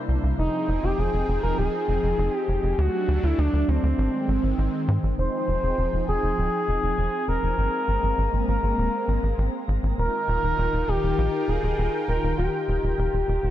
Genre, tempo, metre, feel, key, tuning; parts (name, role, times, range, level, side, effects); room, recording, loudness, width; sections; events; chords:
synthwave; 100 BPM; 4/4; straight; A4 = 441 Hz
warm analog pad; sustained chords; 0.0-13.5 s; C3 to G5; -29 LUFS; equal; chorus, shimmer reverb
tight sequencer bass; bass; 0.1-13.5 s; Eb1 to Ab2; -24 LUFS; equal
expressive synth lead; melody; 0.4-13.5 s; C4 to C5; -26 LUFS; equal; chorus, shimmer reverb, ping-pong delay
light reverb, digital ambience; dark, warm production, nothing above 10.5 kHz; -22 LUFS; side -12 dB against mid
0.0-5.2 A section; 5.2-13.5 B section
0.4 Fm7; 2.8 D; 4.0 Ab; 5.2 Fm7; 7.6 Abadd9; 10.0 Ebadd9